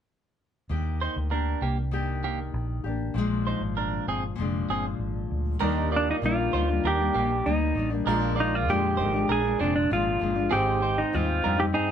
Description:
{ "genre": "indie pop", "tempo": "98 BPM", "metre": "4/4", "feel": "straight", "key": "Eb major", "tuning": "A4 = 440 Hz", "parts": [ { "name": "nylon-string guitar", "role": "accompaniment", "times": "0.7-11.9 s", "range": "Ab2 to G4", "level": "-30 LUFS", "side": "left 5 dB", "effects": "warbly pitch drift" }, { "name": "vintage muted fingered electric bass", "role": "bass", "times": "0.7-11.9 s", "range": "F1 to G2", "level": "-29 LUFS", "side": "equal", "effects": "none" }, { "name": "clean electric guitar", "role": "second line", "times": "1.0-11.9 s", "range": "Bb3 to D5", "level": "-30 LUFS", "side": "right 6 dB", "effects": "none" }, { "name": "warm analog keys", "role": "accompaniment", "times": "5.6-11.9 s", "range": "G3 to G5", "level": "-35 LUFS", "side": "right 1 dB", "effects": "chorus, phaser" }, { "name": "clean electric guitar", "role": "melody", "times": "6.0-11.9 s", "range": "D4 to Ab4", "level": "-25 LUFS", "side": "right 1 dB", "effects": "none" } ], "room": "moderate studio ambience, RT60 0.5 s", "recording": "band playing live in one room", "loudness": "-24 LUFS", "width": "side -8 dB against mid", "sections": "0.7-5.6 A section; 5.6-11.9 B section", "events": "none", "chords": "0.7 Ebmaj7; 3.2 Bb7; 5.6 Ebmaj7; 8.1 Bb7; 10.5 Abmaj7", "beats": "| 0.70 1.31 1.93 2.54 | 3.16 3.77 4.39 5.00 | 5.62 6.23 6.85 7.46 | 8.07 8.69 9.30 9.91 | 10.53 11.14 11.75" }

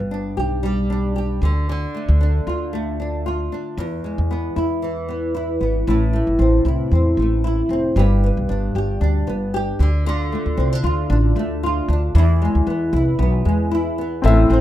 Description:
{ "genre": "acoustic pop", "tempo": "115 BPM", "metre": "4/4", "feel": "swing 55% on 16ths", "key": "A minor", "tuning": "A4 = 440 Hz", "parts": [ { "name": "flamenco guitar", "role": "accompaniment", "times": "0.0-14.6 s", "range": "E2 to G4", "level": "-21 LUFS", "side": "equal", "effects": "double-tracked left and right" }, { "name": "upright bass", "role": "bass", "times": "0.0-14.6 s", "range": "F1 to E2", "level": "-19 LUFS", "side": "equal", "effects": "none" }, { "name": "warm concert grand piano", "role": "accompaniment", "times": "14.2-14.6 s", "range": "C4 to E5", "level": "-17 LUFS", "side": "left 4 dB", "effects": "plate reverb" } ], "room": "moderate studio reverb, RT60 0.6 s", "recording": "rough home demo mix", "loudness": "-17 LUFS", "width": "side -13 dB against mid", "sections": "0.0-5.9 A section; 5.9-14.2 B section", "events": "none", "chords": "0.0 G; 1.4 Dm; 3.8 E; 5.9 Am; 8.0 G; 9.8 Dm; 12.2 E", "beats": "0.12 0.64 1.16 | 1.69 2.21 2.73 3.26 | 3.78 4.30 4.83 5.35 | 5.87 6.39 6.92 7.44 | 7.96 8.49 9.01 9.54 | 10.06 10.58 11.11 11.63 | 12.15 12.67 13.20 13.72 | 14.24" }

